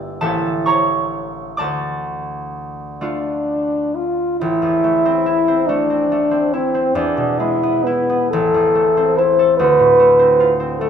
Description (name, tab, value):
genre	classical, romantic duo for French horn and harp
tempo	42-49 BPM (dotted quarters)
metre	6/8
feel	rubato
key	D minor, A minor from 4.4 s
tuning	A4 = 440 Hz
part	concert harp	accompaniment	0.0-10.9 s	G1 to E6	-20 LUFS	right 1 dB	none
part	warm French horn	melody	3.0-10.9 s	B3 to C5	-14 LUFS	left 1 dB	none
room	wet recital hall reverb, RT60 1.5 s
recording	minimal, uncompressed stereo recording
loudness	-14 LUFS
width	side -8 dB against mid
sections	0.0-4.4 A section; 4.4-10.9 B section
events	none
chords	0.2 A7b9; 1.6 Dm; 4.4 Am; 7.0 E; 8.3 Am; 9.6 Dm7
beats	0.23 | 1.59 3.01 | 4.40 5.69 | 6.96 8.32 | 9.59 10.82